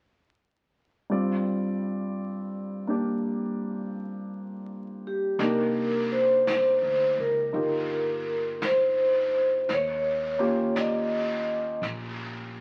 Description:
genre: jazz ballad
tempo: 56 BPM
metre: 4/4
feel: swing 66% on 8ths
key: C minor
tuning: A4 = 440 Hz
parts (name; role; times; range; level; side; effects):
- warm concert grand piano; accompaniment; 1.1-12.6 s; G2 to D5; -32 LUFS; equal; none
- vibraphone with medium mallets; melody; 5.1-11.8 s; G4 to Eb5; -27 LUFS; equal; none
- upright bass; bass; 5.4-12.6 s; G1 to Eb2; -45 LUFS; equal; none
- jazz brush drum kit; drums; 5.4-12.6 s; brushed snare drum, hi-hat, snare drum; -39 LUFS; equal; none
room: moderate studio reverb, RT60 0.8 s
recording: very old 78 rpm record, vinyl crackle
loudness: -27 LUFS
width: mono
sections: 1.1-5.4 A section; 5.4-12.6 B section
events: none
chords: 1.1 G7sus4; 5.4 Cm9; 9.7 Eb9

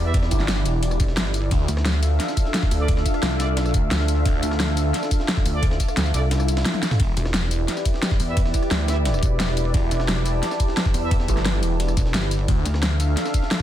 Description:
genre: dark technical drum and bass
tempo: 175 BPM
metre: 4/4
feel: straight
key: E phrygian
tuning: A4 = 440 Hz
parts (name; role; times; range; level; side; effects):
- dark analog pad; sustained chords; 0.0-13.6 s; D4 to F5; -29 LUFS; equal; chorus, sidechain pumping
- pulsing pluck wobble bass; bass; 0.0-13.2 s; E1 to E2; -22 LUFS; equal; chorus
- warbly tape-like pad; texture; 0.0-13.6 s; D4 to A5; -31 LUFS; equal; chorus, built-in reverb, sidechain pumping
- bright brass ensemble; stabs; 0.1, 2.8-3.5, 5.5-6.2, 8.3-8.9, 11.0-11.1 s; D4 to E5; -34 LUFS; right 4 dB; vintage 12-bit sampler grit, tape echo
- breakbeat sampler-style drum kit; drums; 0.1-13.6 s; hi-hat, ride cymbal, snare drum; -35 LUFS; right 1 dB; high-pass filter on cymbals, high-pass filter on snare, high-pass filter on hats
- dubstep drum kit; drums; 0.1-13.6 s; hi-hat, rim click, snare drum, tambourine, toms; -26 LUFS; equal; none
- electronic kick drum; drums; 0.1-13.6 s; none; -21 LUFS; equal; none
- phased detuned saw bass; bass; 0.3-1.7, 4.3-4.4, 7.0-7.2, 9.7-12.6 s; E1 to D2; -23 LUFS; equal; phaser, sidechain pumping
- swell; sound effects; 6.4-7.0 s; none; -33 LUFS; left 5 dB; none
room: little or no reverb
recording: dense, heavily limited modern master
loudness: -19 LUFS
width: side -11 dB against mid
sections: 0.0-13.6 A section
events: kick drops out 6.3-7.0; swell 6.4-7.0; drum fill 6.7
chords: 0.0 Em7; 1.5 Dm; 7.0 Em7; 12.5 Dm

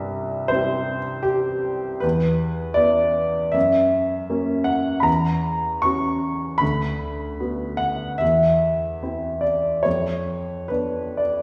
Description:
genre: classical, romantic nocturne for solo piano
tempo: 55-82 BPM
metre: 4/4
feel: rubato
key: unclear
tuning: A4 = 438 Hz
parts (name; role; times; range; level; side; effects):
- warm upright piano; solo; 0.0-11.4 s; C2 to C#6; -22 LUFS; equal; none
room: wet recital hall reverb, RT60 1.7 s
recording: heard from further back in the room, studio reverb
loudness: -22 LUFS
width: mono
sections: 0.0-11.4 A section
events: none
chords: 0.0 C; 2.0 E5; 3.6 F#; 5.1 F#7/E; 6.6 Bm/D; 8.2 C/E; 9.9 C#7b9/E#

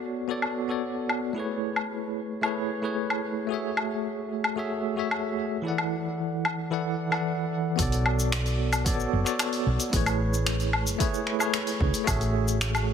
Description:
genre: sunset chillout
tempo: 112 BPM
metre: 4/4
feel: straight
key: unclear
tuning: A4 = 440 Hz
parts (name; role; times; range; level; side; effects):
- bell-like tine electric piano; accompaniment; 0.0-12.9 s; E3 to F#5; -28 LUFS; equal; medium stereo tremolo, auto-pan, digital delay
- deep house drum kit; drums; 0.4-12.9 s; finger snaps, hi-hat, shaker, woodblock; -30 LUFS; left 2 dB; low-pass filter on perc, low-pass filter on hats, low-pass filter on snare, low-pass filter on room
- woody fretless electric bass; bass; 7.8-12.9 s; F#1 to C#2; -26 LUFS; right 1 dB; none
- electronic kick drum; drums; 7.8-12.2 s; none; -28 LUFS; right 1 dB; none
room: light reverb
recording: heavily compressed radio sound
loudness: -25 LUFS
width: side -8 dB against mid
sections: 0.0-7.8 A section; 7.8-12.9 B section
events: none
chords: 0.0 Bm9; 1.4 Amaj9; 3.5 F#m7/A; 5.6 E7sus4; 7.8 Bm9; 9.9 Amaj9; 12.1 F#m7

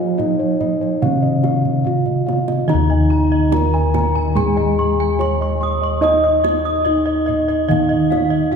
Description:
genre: Javanese gamelan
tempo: 72 BPM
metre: 4/4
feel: straight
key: Eb slendro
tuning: A4 = 440 Hz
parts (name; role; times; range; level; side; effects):
- gamelan-type bronze metallophone; melody; 0.0-8.6 s; Db4-45c to Eb5; -20 LUFS; right 1 dB; none
- gamelan-type bronze metallophone; accompaniment; 0.0-8.6 s; Db3-45c to Eb4; -22 LUFS; right 2 dB; none
- gamelan-type bossed gongs; bass; 0.0-8.6 s; Eb2 to Eb5; -20 LUFS; left 2 dB; none
- gamelan-type bossed gongs; arpeggios; 0.2-8.6 s; Db5-45c to Db6-45c; -23 LUFS; left 3 dB; none
- kendang; percussion; 0.2-8.6 s; none; -26 LUFS; right 5 dB; none
- gamelan-type bronze metallophone; arpeggios; 2.7-8.6 s; Eb5 to Eb6; -25 LUFS; right 1 dB; none
room: wet cathedral reverb, RT60 6.0 s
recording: recorded in a church or concert hall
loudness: -14 LUFS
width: side -6 dB against mid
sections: 0.0-2.7 A section; 2.7-8.6 A section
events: drum fill 1.7-2.7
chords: none

